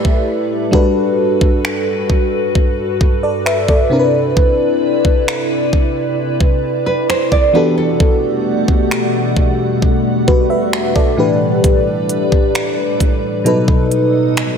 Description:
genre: contemporary R&B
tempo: 66 BPM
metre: 4/4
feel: straight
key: E minor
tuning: A4 = 441 Hz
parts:
  - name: FM electric piano with soft pad layer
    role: accompaniment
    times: 0.0-14.6 s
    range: A2 to E5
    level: -15 LUFS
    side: equal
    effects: chorus
  - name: glassy FM pad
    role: sustained chords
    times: 0.0-14.6 s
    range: E2 to F#5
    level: -20 LUFS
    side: left 1 dB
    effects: ensemble chorus, built-in reverb, sidechain pumping
  - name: nylon-string guitar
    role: arpeggios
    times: 0.0-0.7, 6.9-9.1 s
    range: G4 to D5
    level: -19 LUFS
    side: right 5 dB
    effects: digital delay
  - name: trap drum kit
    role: drums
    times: 0.0-14.6 s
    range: finger snaps, hi-hat, kick drum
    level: -15 LUFS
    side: equal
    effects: none
room: light reverb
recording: none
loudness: -12 LUFS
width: side -7 dB against mid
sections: 0.0-14.6 A section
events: none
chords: 0.0 A9sus4; 0.7 Gmaj9; 3.9 Cmaj9; 7.5 Em11; 11.2 A9sus4; 13.5 B7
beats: | 0.73 1.64 2.55 3.46 | 4.37 5.28 6.18 7.09 | 8.00 8.91 9.82 10.73 | 11.64 12.55 13.46 14.37

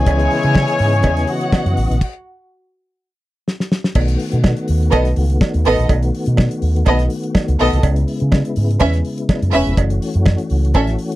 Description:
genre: disco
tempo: 124 BPM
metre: 4/4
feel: straight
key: unclear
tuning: A4 = 440 Hz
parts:
  - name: warm studio violin section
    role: second line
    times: 0.0-10.9 s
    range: B3 to G#5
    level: -18 LUFS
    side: right 1 dB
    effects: none
  - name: mellow tonewheel organ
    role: sustained chords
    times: 0.0-11.2 s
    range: C#3 to D#5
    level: -22 LUFS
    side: left 2 dB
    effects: chorus vibrato, fast rotary speaker
  - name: warm horn section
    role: stabs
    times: 0.0-1.7 s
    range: G#3 to C#5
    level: -20 LUFS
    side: left 3 dB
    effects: none
  - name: fingered electric bass with an envelope filter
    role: bass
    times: 0.0-10.9 s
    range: E1 to C#3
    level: -16 LUFS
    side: equal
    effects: none
  - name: damped 70s drum kit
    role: drums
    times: 0.1-11.2 s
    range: crash cymbal, hi-hat, kick drum, snare drum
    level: -17 LUFS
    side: equal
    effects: none
  - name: cowbell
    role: percussion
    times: 0.1-10.9 s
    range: none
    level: -26 LUFS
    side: right 8 dB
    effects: none
room: little or no reverb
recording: dry, close 1970s-style studio recording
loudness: -14 LUFS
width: side -16 dB against mid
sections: 0.0-4.0 A section; 4.0-11.2 B section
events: stop 2.0-4.0; drum fill 3.5-4.0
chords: 0.0 C#m9; 2.0 N.C.; 4.0 B7; 7.8 C#m7; 9.8 F#m7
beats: | 0.07 0.56 1.04 1.53 | 2.01 2.50 2.98 3.47 | 3.96 4.44 4.93 5.41 | 5.90 6.38 6.87 7.35 | 7.84 8.32 8.81 9.29 | 9.78 10.26 10.75

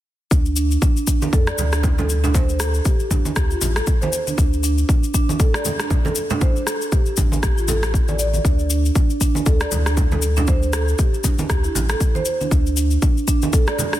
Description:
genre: afro house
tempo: 118 BPM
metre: 4/4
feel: swing 58% on 16ths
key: D minor pentatonic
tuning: A4 = 439 Hz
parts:
  - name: marimba with soft mallets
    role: arpeggios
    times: 0.3-14.0 s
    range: D4 to D5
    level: -24 LUFS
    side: right 2 dB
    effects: sidechain pumping, dub echo
  - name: warm sub bass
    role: bass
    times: 0.3-13.0 s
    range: A1 to F2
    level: -20 LUFS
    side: equal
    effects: tube saturation, sidechain pumping
  - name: electronic kick drum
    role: drums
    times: 0.3-13.6 s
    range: none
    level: -18 LUFS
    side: equal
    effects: none
  - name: cabasa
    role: percussion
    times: 0.3-14.0 s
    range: none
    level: -28 LUFS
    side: left 7 dB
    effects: none
  - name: congas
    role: percussion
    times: 1.2-13.9 s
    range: none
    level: -26 LUFS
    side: right 3 dB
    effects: none
  - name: electronic rim click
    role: drums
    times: 1.5-14.0 s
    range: none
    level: -27 LUFS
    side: equal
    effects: soft clipping on snare
room: small room ambience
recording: dense, heavily limited modern master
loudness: -16 LUFS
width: side -14 dB against mid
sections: 0.3-14.0 A section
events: none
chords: 0.3 D5; 8.4 N.C.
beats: | 0.31 0.82 1.33 1.84 | 2.35 2.85 3.36 3.87 | 4.38 4.89 5.40 5.91 | 6.41 6.92 7.43 7.94 | 8.45 8.96 9.46 9.97 | 10.48 10.99 11.50 12.01 | 12.52 13.02 13.53

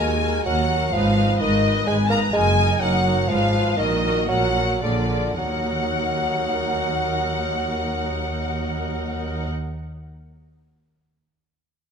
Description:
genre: cinematic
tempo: 106-130 BPM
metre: 3/4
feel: straight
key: Eb minor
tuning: A4 = 440 Hz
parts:
  - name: warm studio violin section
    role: melody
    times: 0.0-9.5 s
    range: D5 to Bb5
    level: -28 LUFS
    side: left 3 dB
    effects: none
  - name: warm studio violin section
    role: second line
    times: 0.0-9.5 s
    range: D5 to Bb5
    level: -28 LUFS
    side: left 3 dB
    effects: none
  - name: warm bassoon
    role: accompaniment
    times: 0.0-9.5 s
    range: D3 to Bb3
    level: -25 LUFS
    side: right 1 dB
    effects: none
  - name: warm studio viola section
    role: accompaniment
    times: 0.0-9.5 s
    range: Eb4 to Cb5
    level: -29 LUFS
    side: right 2 dB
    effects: none
  - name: warm studio cello section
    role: bass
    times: 0.0-9.5 s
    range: Eb2 to Bb2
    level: -26 LUFS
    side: right 1 dB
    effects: none
  - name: warm studio double bass section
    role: bass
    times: 0.0-9.5 s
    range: Gb1 to Eb2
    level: -26 LUFS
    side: right 1 dB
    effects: none
room: moderate scoring stage reverb, RT60 1.8 s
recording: none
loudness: -19 LUFS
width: side -6 dB against mid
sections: 0.0-5.4 A section; 5.4-8.7 B section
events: slowing down 1.6-5.4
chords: 0.0 Ebm; 0.9 Abm; 2.3 Ebm/Gb; 3.3 Fdim/Ab; 3.8 Ebm/Bb; 4.8 Bb7; 5.4 Ebm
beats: 0.00 0.47 | 0.94 1.41 1.88 | 2.34 2.81 3.29 | 3.79 4.30 4.84 | 5.39 5.95 6.50 | 7.06 7.61 8.16

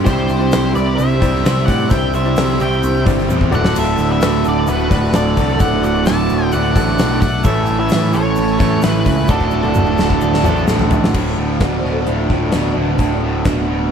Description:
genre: classic rock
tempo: 130 BPM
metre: 4/4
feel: straight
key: D mixolydian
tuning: A4 = 440 Hz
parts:
  - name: string machine, full ensemble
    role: sustained chords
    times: 0.0-13.7 s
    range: G3 to F5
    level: -26 LUFS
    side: equal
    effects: none
  - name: overdriven electric guitar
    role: riff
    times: 0.0-13.9 s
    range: D2 to C4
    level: -20 LUFS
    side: right 14 dB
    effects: none
  - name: tight distorted guitar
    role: riff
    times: 0.0-13.9 s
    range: D2 to C5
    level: -22 LUFS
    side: left 12 dB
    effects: distortion
  - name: growling picked electric bass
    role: bass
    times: 0.0-13.9 s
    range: D1 to A2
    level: -20 LUFS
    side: equal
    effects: overdrive
  - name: octave-fuzz lead guitar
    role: melody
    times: 0.1-10.6 s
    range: A4 to A5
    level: -23 LUFS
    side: left 1 dB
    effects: distortion
  - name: octave-fuzz lead guitar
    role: second line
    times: 0.1-10.6 s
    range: D4 to E5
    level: -25 LUFS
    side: right 4 dB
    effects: distortion
  - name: bright baby grand piano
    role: accompaniment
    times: 0.1-11.0 s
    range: E4 to D5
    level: -28 LUFS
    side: left 6 dB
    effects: none
  - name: gated 80s drum kit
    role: drums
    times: 0.1-13.6 s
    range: crash cymbal, hi-hat, kick drum, snare drum, toms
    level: -18 LUFS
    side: equal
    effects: none
  - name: egg shaker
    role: percussion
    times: 0.1-11.1 s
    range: none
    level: -40 LUFS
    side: left 12 dB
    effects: none
room: little or no reverb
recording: none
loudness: -13 LUFS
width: side -7 dB against mid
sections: 0.0-11.1 A section; 11.1-13.9 B section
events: drum fill 3.3-3.8, 9.3-11.1; string machine solo 11.1-13.9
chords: 0.0 Cadd9; 3.5 D; 7.5 A; 9.3 D; 11.1 D5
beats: | 0.07 0.53 0.99 1.45 | 1.91 2.37 2.83 3.29 | 3.75 4.21 4.68 5.14 | 5.60 6.06 6.53 6.99 | 7.45 7.91 8.37 8.84 | 9.30 9.76 10.22 10.68 | 11.14 11.61 12.07 12.53 | 12.99 13.46

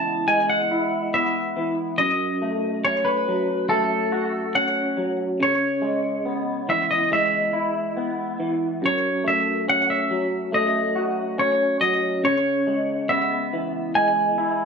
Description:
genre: post-rock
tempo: 70 BPM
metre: 4/4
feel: straight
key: F# dorian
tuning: A4 = 440 Hz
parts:
  - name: twangy electric guitar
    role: melody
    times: 0.0-14.7 s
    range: A4 to A5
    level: -22 LUFS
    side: equal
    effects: slapback echo
  - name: electric guitar through a small old amp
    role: arpeggios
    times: 0.0-14.7 s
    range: F#2 to F#4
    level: -24 LUFS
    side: equal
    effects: ensemble chorus, slapback echo
room: wet studio reverb, RT60 0.5 s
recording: none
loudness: -20 LUFS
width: side -5 dB against mid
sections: 0.0-14.7 A section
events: none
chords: 0.0 C#m7; 2.0 F#m; 5.4 C#m7; 8.8 F#m; 12.3 C#m7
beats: 0.28 1.14 | 2.00 2.85 3.71 4.56 | 5.42 6.27 7.13 7.98 | 8.84 9.69 10.54 11.40 | 12.25 13.11 13.96

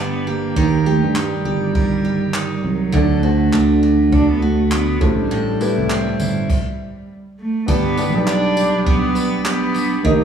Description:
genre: acoustic pop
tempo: 101 BPM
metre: 4/4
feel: swing 60% on 16ths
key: G major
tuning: A4 = 441 Hz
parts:
  - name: warm cello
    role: melody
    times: 0.0-10.2 s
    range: F#3 to D4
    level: -21 LUFS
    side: right 1 dB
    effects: none
  - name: picked steel-string acoustic guitar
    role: accompaniment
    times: 0.0-10.2 s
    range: A2 to B4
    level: -21 LUFS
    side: right 2 dB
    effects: none
  - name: sustaining fretless electric bass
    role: bass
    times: 0.0-10.2 s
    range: G1 to G2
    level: -21 LUFS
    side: right 3 dB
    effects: none
  - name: jazz brush drum kit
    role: drums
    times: 0.6-10.2 s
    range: crash cymbal, handclaps, kick drum, tambourine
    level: -22 LUFS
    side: right 1 dB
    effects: none
  - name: felt-muted upright piano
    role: accompaniment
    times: 2.9-10.2 s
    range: A3 to Eb5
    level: -25 LUFS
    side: left 4 dB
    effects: none
  - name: pedal harmonium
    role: sustained chords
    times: 7.7-10.2 s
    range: G4 to B5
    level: -28 LUFS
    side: right 5 dB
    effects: none
room: wet recital hall reverb, RT60 1.6 s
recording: recorded in a church or concert hall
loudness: -15 LUFS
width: side -8 dB against mid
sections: 0.0-7.7 A section; 7.7-10.2 B section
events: stop 6.5-7.7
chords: 0.0 G; 0.6 Eb; 2.9 D; 5.0 Am7; 7.7 G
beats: | 0.57 1.16 1.75 2.35 | 2.94 3.53 4.13 4.72 | 5.31 5.90 6.50 7.09 | 7.68 8.27 8.86 9.46 | 10.05

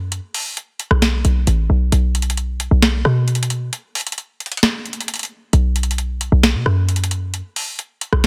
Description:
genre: hip hop, trap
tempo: 133 BPM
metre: 4/4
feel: half-time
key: unclear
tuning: A4 = 440 Hz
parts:
  - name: short 808-style bass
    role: bass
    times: 0.0-8.3 s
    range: A1 to B2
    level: -18 LUFS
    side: equal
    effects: none
  - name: booming analog drum machine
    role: drums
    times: 0.1-8.3 s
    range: hi-hat, rim click, snare drum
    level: -22 LUFS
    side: equal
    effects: none
room: little or no reverb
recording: dense, heavily limited modern master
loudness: -19 LUFS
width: mono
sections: 0.0-8.3 A section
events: break 3.7-5.5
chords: none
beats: | 0.12 0.57 1.02 1.47 | 1.92 2.37 2.83 3.28 | 3.73 4.18 4.63 5.08 | 5.53 5.98 6.43 6.88 | 7.34 7.79 8.24

